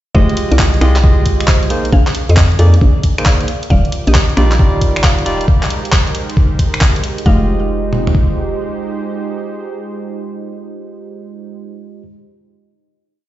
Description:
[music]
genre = UK garage, two-step garage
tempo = 135 BPM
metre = 4/4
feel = swing 66% on 16ths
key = F dorian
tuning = A4 = 436 Hz
[part]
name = mallet-like synth pluck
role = melody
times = 0.1-12.0 s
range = F4 to F5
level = -26 LUFS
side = left 1 dB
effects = chorus, cassette tape, ping-pong delay
[part]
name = barky tine electric piano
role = stabs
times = 0.1-12.0 s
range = G3 to Eb5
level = -22 LUFS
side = right 2 dB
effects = ping-pong delay
[part]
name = hollow knocking FM bass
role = bass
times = 0.1-8.6 s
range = Eb1 to F2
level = -13 LUFS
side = equal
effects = none
[part]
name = boom bap sampler-style drum kit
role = drums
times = 0.1-8.3 s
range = kick drum, toms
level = -13 LUFS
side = equal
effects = studio reverb
[part]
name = garage drum kit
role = drums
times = 0.3-7.2 s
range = finger snaps, handclaps, hi-hat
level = -19 LUFS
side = equal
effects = overdrive, studio reverb
[part]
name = warm analog pad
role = sustained chords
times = 3.7-11.6 s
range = Ab3 to D6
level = -26 LUFS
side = right 2 dB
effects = chorus, sidechain pumping
[sound]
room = little or no reverb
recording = played on a big sound system in a bare room, stone room reverb, nothing above 7.8 kHz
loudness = -11 LUFS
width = side -14 dB against mid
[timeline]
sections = 0.1-7.3 drop; 7.3-10.8 final chord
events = drop 0.1-7.3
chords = 0.1 Fm9; 1.7 Bb9sus4; 3.5 Ebmaj9; 5.5 Abmaj7; 7.3 Fm9

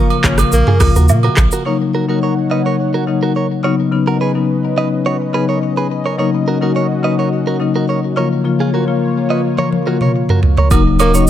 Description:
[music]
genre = afrobeats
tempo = 106 BPM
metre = 4/4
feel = straight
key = Eb minor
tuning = A4 = 440 Hz
[part]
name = marimba with medium hard mallets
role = accompaniment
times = 0.0-11.3 s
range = Db3 to F4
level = -16 LUFS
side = left 4 dB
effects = none
[part]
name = warm analog pad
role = sustained chords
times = 0.0-11.3 s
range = Bb3 to Db6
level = -23 LUFS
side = left 1 dB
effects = chorus
[part]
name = direct-recorded clean electric guitar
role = riff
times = 0.0-11.2 s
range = F4 to Eb5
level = -21 LUFS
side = right 5 dB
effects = ping-pong delay
[part]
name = agogo bells and woodblock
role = percussion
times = 0.1-1.4, 10.7-11.1 s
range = none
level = -21 LUFS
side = right 9 dB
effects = none
[part]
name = warm sub bass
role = bass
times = 0.2-1.5, 10.7-11.3 s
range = Eb1 to Bb2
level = -13 LUFS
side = right 1 dB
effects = none
[part]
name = afro-pop drum kit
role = drums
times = 0.2-1.6, 9.6-11.3 s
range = handclaps, hi-hat, kick drum, rim click, shaker, toms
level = -14 LUFS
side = right 1 dB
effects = overdrive
[part]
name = clear tenor saxophone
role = melody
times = 0.3-0.9, 11.0-11.1 s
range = Bb3 to Db4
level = -21 LUFS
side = equal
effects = ping-pong delay
[sound]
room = little or no reverb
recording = none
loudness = -12 LUFS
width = side -11 dB against mid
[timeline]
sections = 0.0-1.7 A section; 1.7-10.7 B section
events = drum fill 9.6-10.7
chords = 0.0 Bbm; 1.7 Ebm7; 3.6 Badd9; 6.2 Ebm7; 8.2 Bbm; 10.7 Ebm7

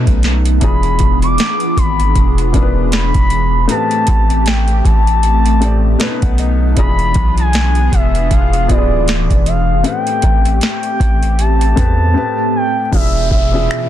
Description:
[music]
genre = contemporary R&B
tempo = 78 BPM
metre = 4/4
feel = swing 58% on 16ths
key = A minor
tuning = A4 = 440 Hz
[part]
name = gliding portamento lead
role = melody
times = 0.0-13.9 s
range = D5 to D6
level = -18 LUFS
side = equal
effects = chorus, phaser, ping-pong delay
[part]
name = felt-muted upright piano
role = accompaniment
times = 0.0-13.9 s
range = A2 to A5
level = -22 LUFS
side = left 6 dB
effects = none
[part]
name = hollow soft pad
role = sustained chords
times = 0.0-13.9 s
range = B2 to G#4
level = -21 LUFS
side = equal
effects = ensemble chorus, sidechain pumping
[part]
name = long sustained 808-style bass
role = bass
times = 0.0-13.7 s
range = D1 to E2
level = -15 LUFS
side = equal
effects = none
[part]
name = booming analog drum machine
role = drums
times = 0.1-13.9 s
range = finger snaps, hi-hat, kick drum, snare drum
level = -14 LUFS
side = equal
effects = overdrive, vintage 12-bit sampler grit
[part]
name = downlifter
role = sound effects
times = 12.9-13.9 s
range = none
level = -25 LUFS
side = left 1 dB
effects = none
[sound]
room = digital ambience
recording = dense, heavily limited modern master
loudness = -11 LUFS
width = side -12 dB against mid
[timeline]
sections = 0.0-12.9 A section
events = felt piano fill 5.6-6.8; break 12.2-12.9; hi-hats muted 12.9-13.9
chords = 0.0 B7; 0.6 E7b9; 3.7 Am7; 6.0 B7; 6.8 E7b9; 9.8 Am7; 12.9 E7b9

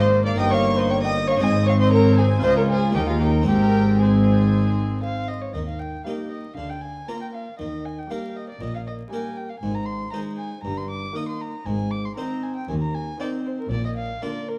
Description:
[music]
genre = classical, baroque-style concerto movement with solo episodes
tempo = 117 BPM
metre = 4/4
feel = straight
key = Ab major, Eb major from 5.5 s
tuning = A4 = 436 Hz
[part]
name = dark violin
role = melody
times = 0.0-14.6 s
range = F4 to Eb6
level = -29 LUFS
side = equal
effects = none
[part]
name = rich chamber violin section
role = melody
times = 0.0-14.6 s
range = F4 to Eb6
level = -35 LUFS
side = equal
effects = none
[part]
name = rich chamber violin section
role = second line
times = 0.0-14.6 s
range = Bb3 to Ab5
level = -33 LUFS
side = equal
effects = none
[part]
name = dark chamber viola section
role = accompaniment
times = 0.0-14.6 s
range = D3 to F4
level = -31 LUFS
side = equal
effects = none
[part]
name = harpsichord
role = accompaniment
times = 0.0-14.6 s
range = Db2 to Eb5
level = -32 LUFS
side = equal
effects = none
[part]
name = rich chamber cello section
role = bass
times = 0.0-14.1 s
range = Db2 to Eb3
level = -26 LUFS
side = equal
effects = none
[part]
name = rich chamber double bass section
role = bass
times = 0.0-14.1 s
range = G1 to Eb2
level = -28 LUFS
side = equal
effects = none
[sound]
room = moderate recital hall reverb, RT60 1.3 s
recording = dark, warm production, vinyl crackle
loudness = -22 LUFS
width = mono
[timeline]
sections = 0.0-5.5 A section; 5.5-14.6 B section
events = none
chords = 0.4 Eb/G; 1.4 Ab; 2.4 Db; 3.0 Eb; 3.5 Ab; 5.5 Eb; 6.6 Bb/D; 7.6 Eb; 9.6 Ab; 10.6 Eb/G; 11.7 Ab; 13.7 Bb

